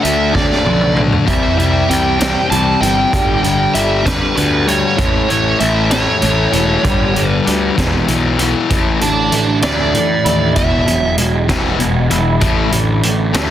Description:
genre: quiet-loud alternative rock.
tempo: 65 BPM (dotted quarters).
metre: 6/8.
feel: straight.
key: unclear.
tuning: A4 = 436 Hz.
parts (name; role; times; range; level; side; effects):
biting lead guitar; melody; 0.0-11.1 s; D4 to A5; -18 LUFS; right 4 dB; overdrive, tape echo.
electric guitar through a small old amp; arpeggios; 0.0-13.5 s; E2 to E4; -23 LUFS; right 4 dB; ensemble chorus, tape echo.
fuzz guitar; riff; 0.0-13.5 s; E2 to D4; -17 LUFS; left 6 dB; distortion.
fuzz picked electric bass; bass; 0.0-13.5 s; E1 to A2; -18 LUFS; right 1 dB; overdrive.
raw garage drum kit; drums; 0.0-13.5 s; hi-hat, kick drum, snare drum, toms; -18 LUFS; equal; none.
room: light reverb, small room ambience.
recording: dense, heavily limited modern master.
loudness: -12 LUFS.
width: side -11 dB against mid.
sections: 0.0-8.7 A section; 8.7-13.5 B section.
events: drum fill 0.3-1.3; lead electric guitar solo 8.7-13.5.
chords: 0.0 D5; 1.3 C; 3.1 G5; 5.0 A; 6.8 G; 7.8 E; 8.7 Asus4; 10.6 Eadd9; 12.4 Asus4.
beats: 0.34 | 1.27 2.20 | 3.13 4.06 | 4.99 5.92 | 6.85 7.78 | 8.70 9.63 | 10.56 11.49 | 12.42 13.35.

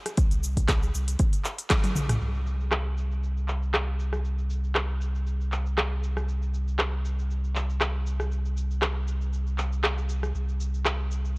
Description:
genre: afro house.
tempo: 118 BPM.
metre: 4/4.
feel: swing 54% on 16ths.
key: unclear.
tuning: A4 = 442 Hz.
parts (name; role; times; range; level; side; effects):
afro-pop drum kit; drums; 0.1-11.3 s; handclaps, hi-hat, rim click, shaker, toms; -29 LUFS; equal; low-pass filter on snare, low-pass filter on hats, low-pass filter on perc, low-pass filter on toms, low-pass filter on room.
warm sub bass; bass; 0.2-11.4 s; Bb1 to C2; -27 LUFS; equal; sidechain pumping.
electronic kick drum; drums; 0.2-1.8 s; none; -23 LUFS; equal; none.
room: little or no reverb.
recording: dry, gritty hardware recording, transformer saturation, cassette tape.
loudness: -25 LUFS.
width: side -27 dB against mid.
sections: 0.0-2.2 A section; 2.2-11.4 B section.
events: drum fill 1.7-2.2; band accent 1.7.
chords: none.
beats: | 0.18 0.69 1.20 1.71 | 2.21 2.72 3.23 3.74 | 4.25 4.76 5.26 5.77 | 6.28 6.79 7.30 7.81 | 8.31 8.82 9.33 9.84 | 10.35 10.86 11.37.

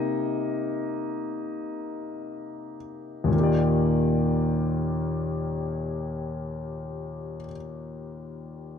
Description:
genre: pop.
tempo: free time.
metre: none.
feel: none.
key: Eb major.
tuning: A4 = 441 Hz.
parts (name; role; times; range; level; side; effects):
clear grand piano; accompaniment; 0.0-8.8 s; Eb2 to Eb5; -26 LUFS; left 1 dB; none.
room: light reverb.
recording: dark, warm production.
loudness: -25 LUFS.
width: side -7 dB against mid.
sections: 0.0-3.3 A section; 3.3-7.6 B section.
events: slowing down 0.0-3.3; grand piano solo 0.0-3.3.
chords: 0.0 Cm7; 3.3 Ebmaj7.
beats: free time.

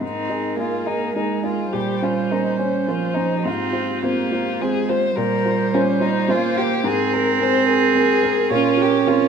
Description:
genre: neoclassical piano and strings.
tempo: 105 BPM.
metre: 3/4.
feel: rubato.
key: unclear.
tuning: A4 = 440 Hz.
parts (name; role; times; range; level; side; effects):
dark violin; melody; 0.0-9.3 s; Db4 to C5; -23 LUFS; left 5 dB; none.
warm cello; second line; 0.0-9.3 s; F3 to Db4; -21 LUFS; right 8 dB; none.
clear upright piano; accompaniment; 0.0-9.3 s; Ab2 to C5; -24 LUFS; equal; none.
dark viola; accompaniment; 0.0-9.3 s; G4 to C5; -26 LUFS; right 3 dB; none.
room: light reverb.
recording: minimal, uncompressed stereo recording.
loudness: -17 LUFS.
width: side -6 dB against mid.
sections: 0.0-9.3 A section.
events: none.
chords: 0.0 Abadd9; 1.7 Bbmadd9; 3.5 Fmadd9/Ab; 5.2 Bbmadd9; 6.8 Abadd9; 8.5 Bbmadd9.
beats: | 0.02 0.59 1.17 | 1.75 2.32 2.89 | 3.46 4.04 4.61 | 5.17 5.73 6.29 | 6.85 7.40 7.95 | 8.51 9.06.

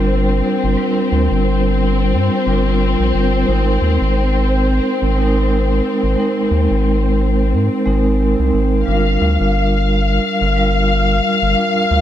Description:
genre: trip hop.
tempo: 89 BPM.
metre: 4/4.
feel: swing 57% on 16ths.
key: G phrygian.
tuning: A4 = 439 Hz.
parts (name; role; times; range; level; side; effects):
vibraphone with soft mallets; accompaniment; 0.0-12.0 s; G3 to Bb4; -18 LUFS; right 1 dB; tremolo, vintage 12-bit sampler grit, tape echo.
dark studio string section; sustained chords; 0.0-12.0 s; C4 to F5; -19 LUFS; left 2 dB; none.
round analog bass; bass; 0.0-12.0 s; G1 to Ab2; -16 LUFS; equal; none.
room: moderate lush hall reverb, RT60 2.1 s.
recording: dreamy mix soaked in reverb.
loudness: -13 LUFS.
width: side -11 dB against mid.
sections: 0.0-12.0 A section.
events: none.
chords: 0.0 Gm7; 3.5 Abadd9; 8.9 Gm7.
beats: 0.10 | 0.78 1.45 2.13 2.80 | 3.47 4.15 4.82 5.50 | 6.17 6.84 7.52 8.19 | 8.87 9.54 10.22 10.89 | 11.56.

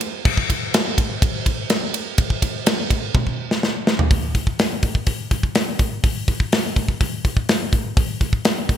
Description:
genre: metal.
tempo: 124 BPM.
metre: 4/4.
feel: straight.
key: none.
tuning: none.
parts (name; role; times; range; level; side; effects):
modern studio drum kit; drums; 0.0-8.8 s; crash cymbal, hi-hat, kick drum, ride cymbal, snare drum, toms; -18 LUFS; equal; gated reverb.
room: moderate plate reverb, RT60 1.5 s.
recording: bright 1980s-style digital production.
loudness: -18 LUFS.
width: side -10 dB against mid.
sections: 0.0-4.1 A section; 4.1-8.8 B section.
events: drum fill 3.1-4.1.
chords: none.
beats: | 0.25 0.74 1.22 1.70 | 2.18 2.66 3.15 3.63 | 4.11 4.59 5.08 5.56 | 6.04 6.52 7.00 7.49 | 7.97 8.45.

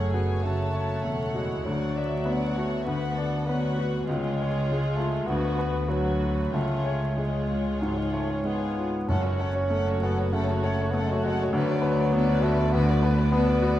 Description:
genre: classical, romantic movement for piano and orchestra.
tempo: 92-103 BPM.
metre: 4/4.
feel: rubato.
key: F# minor.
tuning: A4 = 440 Hz.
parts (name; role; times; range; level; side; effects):
clear baby grand piano; melody; 0.0-13.8 s; C#2 to D5; -26 LUFS; left 2 dB; none.
warm chamber violin section; melody; 0.0-13.8 s; B4 to A5; -37 LUFS; left 4 dB; none.
rich studio violin section; second line; 0.0-13.8 s; F#4 to D5; -37 LUFS; left 3 dB; none.
clear bassoon; accompaniment; 0.0-13.8 s; F#3 to C#4; -32 LUFS; right 2 dB; none.
rich studio viola section; accompaniment; 0.0-13.8 s; C#4 to A4; -38 LUFS; right 1 dB; none.
dark studio double bass section; bass; 0.0-13.8 s; E1 to D2; -32 LUFS; right 1 dB; none.
warm studio cello section; bass; 0.0-13.8 s; C#2 to F#2; -33 LUFS; right 1 dB; none.
timpani; percussion; 9.1-10.0 s; F#2; -31 LUFS; equal; none.
room: wet scoring stage reverb, RT60 1.7 s.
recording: dark, warm production, vinyl crackle.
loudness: -23 LUFS.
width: side -13 dB against mid.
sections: 0.0-13.8 A section.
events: none.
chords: 0.0 F#m; 1.7 Bm/D; 4.1 C#; 5.3 Bm/D; 6.5 C#; 9.1 F#m; 11.6 Bm/D.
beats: 0.44 1.05 | 1.67 2.27 2.88 3.47 | 4.08 4.67 5.27 5.89 | 6.53 7.17 7.81 8.45 | 9.10 9.72 10.34 10.96 | 11.55 12.14 12.74 13.33.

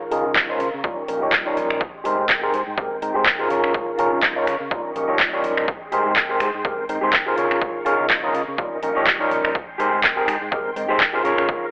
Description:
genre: filtered disco house.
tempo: 124 BPM.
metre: 4/4.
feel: swing 56% on 16ths.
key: Ab major.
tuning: A4 = 440 Hz.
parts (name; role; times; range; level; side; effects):
tine electric piano; accompaniment; 0.0-11.7 s; G3 to G5; -26 LUFS; equal; phaser, sidechain pumping, low-pass filter.
phased string machine; sustained chords; 0.0-11.7 s; Ab3 to Db6; -34 LUFS; equal; none.
electric guitar at the edge of break-up; riff; 0.0-11.6 s; Eb4 to Eb5; -25 LUFS; equal; sidechain pumping, low-pass filter.
fingered electric bass; bass; 0.0-11.7 s; Ab1 to Db3; -38 LUFS; equal; transformer saturation, sidechain pumping, low-pass filter.
house drum kit; drums; 0.1-11.5 s; finger snaps, handclaps, hi-hat; -23 LUFS; equal; overdrive, sidechain pumping on cymbals, sidechain pumping on hats.
electronic kick drum; drums; 0.4-11.6 s; none; -28 LUFS; equal; none.
room: light reverb.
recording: dry, gritty hardware recording, telephone sound.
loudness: -21 LUFS.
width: mono.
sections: 0.0-11.7 A section.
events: filter sweep 0.0-11.7.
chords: 0.0 Db6; 0.8 Eb7; 1.8 Abmaj7; 3.5 Db6; 4.7 Eb7; 5.7 Abmaj7; 7.4 Db6; 8.6 Eb7; 9.6 Abmaj7.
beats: 0.36 0.84 1.33 | 1.81 2.29 2.78 3.26 | 3.75 4.23 4.71 5.20 | 5.68 6.17 6.65 7.13 | 7.62 8.10 8.59 9.07 | 9.55 10.04 10.52 11.00 | 11.49.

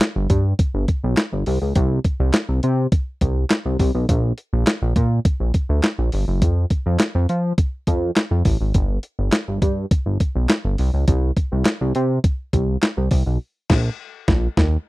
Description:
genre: early-eighties boogie funk.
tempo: 103 BPM.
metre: 4/4.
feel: straight.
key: unclear.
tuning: A4 = 439 Hz.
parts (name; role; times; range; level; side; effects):
crisp 8-bit digital drum machine; drums; 0.0-14.7 s; crash cymbal, handclaps, hi-hat, kick drum, snare drum; -18 LUFS; equal; none.
chorused synth bass; bass; 0.2-14.8 s; Gb1 to F3; -18 LUFS; equal; none.
room: little or no reverb.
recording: dry, close 1970s-style studio recording.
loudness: -18 LUFS.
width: side -19 dB against mid.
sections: 0.0-14.9 A section.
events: band accent 13.4-14.9.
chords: none.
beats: 0.01 0.59 1.18 | 1.76 2.34 2.92 3.51 | 4.09 4.67 5.25 5.84 | 6.42 7.00 7.58 8.17 | 8.75 9.33 9.91 10.50 | 11.08 11.66 12.24 12.83 | 13.41 13.99 14.57.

